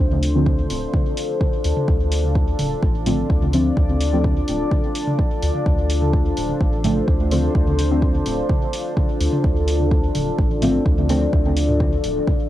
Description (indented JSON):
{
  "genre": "dub techno",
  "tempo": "127 BPM",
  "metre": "4/4",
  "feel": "straight",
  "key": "D minor",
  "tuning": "A4 = 440 Hz",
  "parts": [
    { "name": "deep dark ambient pad", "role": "sustained chords", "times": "0.0-12.5 s", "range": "D4 to D5", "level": "-23 LUFS", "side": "left 1 dB", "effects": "chorus, built-in reverb, sidechain pumping, cassette tape" },
    { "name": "soft dub sub bass", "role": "bass", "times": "0.0-12.2 s", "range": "D1 to D2", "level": "-22 LUFS", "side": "equal", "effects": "tube saturation, sidechain pumping" },
    { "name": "electronic toms", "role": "percussion", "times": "0.1-12.4 s", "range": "none", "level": "-28 LUFS", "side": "equal", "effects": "sidechain pumping on toms, cassette tape" },
    { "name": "electronic hi-hat", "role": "drums", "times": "0.2-12.1 s", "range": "none", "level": "-32 LUFS", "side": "equal", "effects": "cassette tape" },
    { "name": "deep mellow chord stab", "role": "stabs", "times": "0.3-11.2 s", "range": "D3 to C4", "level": "-23 LUFS", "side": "equal", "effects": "chorus, phaser, sidechain pumping, cassette tape, dub echo" },
    { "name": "electronic kick drum", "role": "drums", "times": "0.5-12.4 s", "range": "none", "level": "-20 LUFS", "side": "equal", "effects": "cassette tape" }
  ],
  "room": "light reverb",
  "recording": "home recording on cassette",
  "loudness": "-17 LUFS",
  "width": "side -13 dB against mid",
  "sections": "0.0-12.5 A section",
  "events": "none",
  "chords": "0.0 Dm7"
}